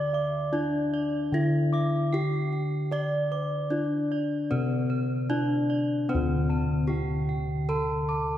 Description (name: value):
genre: Javanese gamelan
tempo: 75 BPM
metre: 4/4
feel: straight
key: D slendro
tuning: A4 = 440 Hz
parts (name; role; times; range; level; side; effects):
- gamelan-type bronze metallophone; melody; 0.0-8.4 s; C4-45c to D5; -29 LUFS; left 1 dB; none
- gamelan-type bossed gongs; arpeggios; 0.0-8.4 s; C5-45c to D6; -38 LUFS; left 4 dB; none
- gamelan-type bronze metallophone; arpeggios; 0.0-8.4 s; C5-45c to D6; -37 LUFS; right 4 dB; none
- gamelan-type bossed gongs; bass; 0.0-8.4 s; D2 to D5; -28 LUFS; equal; none
room: wet concert hall reverb, RT60 2.5 s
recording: heard from further back in the room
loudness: -25 LUFS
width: side -12 dB against mid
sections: 0.0-8.4 A section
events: none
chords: none